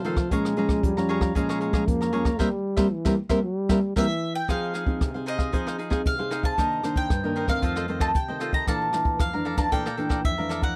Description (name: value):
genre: samba and choro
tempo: 115 BPM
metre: 4/4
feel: straight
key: F minor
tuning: A4 = 440 Hz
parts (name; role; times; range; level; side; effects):
- mellow trombone; second line; 0.0-4.5 s; E3 to Bb3; -30 LUFS; equal; none
- cavaquinho; accompaniment; 0.0-10.8 s; Eb4 to Bb5; -34 LUFS; equal; none
- nylon-string guitar; accompaniment; 0.0-10.7 s; F2 to Ab4; -30 LUFS; equal; none
- jazz brush drum kit; drums; 0.0-10.8 s; hi-hat, kick drum, rim click, snare drum; -28 LUFS; equal; none
- bowl-back mandolin; melody; 4.0-10.8 s; Eb5 to Bb5; -31 LUFS; equal; slapback echo
room: little or no reverb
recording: dry, close 1970s-style studio recording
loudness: -25 LUFS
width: mono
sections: 0.0-4.5 A section; 4.5-10.8 B section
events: band accent 2.4-4.5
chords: 0.3 Bbm7; 2.4 C7; 4.5 Fm7; 6.6 Cm9; 7.6 F7; 8.7 Bbmaj7#11